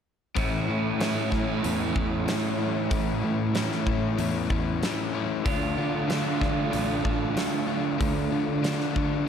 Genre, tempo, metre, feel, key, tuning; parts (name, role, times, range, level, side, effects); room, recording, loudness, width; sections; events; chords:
rock, shoegaze and dream pop; 94 BPM; 4/4; straight; A major; A4 = 440 Hz
biting overdriven guitar; riff; 0.4-9.3 s; A2 to F4; -29 LUFS; right 9 dB; reverse reverb
overdriven electric guitar; riff; 0.4-9.3 s; A2 to F4; -29 LUFS; left 10 dB; wide subtle chorus
growling fingered electric bass; bass; 0.4-9.2 s; A1 to D3; -30 LUFS; equal; overdrive
huge arena drum kit; drums; 0.4-9.1 s; hi-hat, kick drum, snare drum; -30 LUFS; equal
light reverb, small room ambience; -24 LUFS; side -8 dB against mid
0.4-9.3 A section
0.4 A; 5.5 Dm